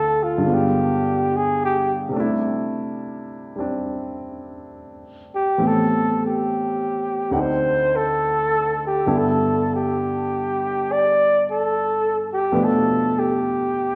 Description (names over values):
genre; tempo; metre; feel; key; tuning
jazz; 70 BPM; 4/4; swing 69% on 8ths; unclear; A4 = 439 Hz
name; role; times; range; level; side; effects
mellow flugelhorn; melody; 0.0-14.0 s; F4 to D5; -22 LUFS; equal; none
warm baby grand piano; accompaniment; 0.0-14.0 s; D2 to F#5; -26 LUFS; equal; none
room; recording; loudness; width
wet recital hall reverb, RT60 1.3 s; recorded in a church or concert hall; -21 LUFS; mono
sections
0.0-14.0 A section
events
flugelhorn solo 0.0-14.0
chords
0.4 G7b9; 2.2 C6; 5.6 Am9; 7.3 D7b9; 9.1 G69; 12.5 Bm7b5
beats
0.44 1.29 | 2.15 3.01 3.87 4.73 | 5.59 6.45 7.32 8.19 | 9.06 9.93 10.79 11.65 | 12.51 13.37